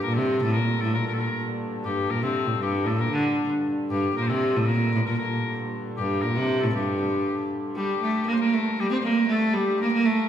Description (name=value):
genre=medieval dance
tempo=116 BPM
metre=2/4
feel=straight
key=G minor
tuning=A4 = 443 Hz
part: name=clear shawm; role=second line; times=0.0-10.3 s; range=C4 to C5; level=-30 LUFS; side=left 5 dB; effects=none
part: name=dark hurdy-gurdy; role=drone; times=0.0-10.3 s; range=G2 to D3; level=-35 LUFS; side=left 1 dB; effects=none
part: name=warm viola da gamba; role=melody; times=0.1-10.3 s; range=G2 to C4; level=-23 LUFS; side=right 1 dB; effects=none
room=wet recital hall reverb, RT60 1.8 s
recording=recorded in a church or concert hall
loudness=-22 LUFS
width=side -9 dB against mid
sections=0.0-7.8 A section; 7.8-10.3 B section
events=none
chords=none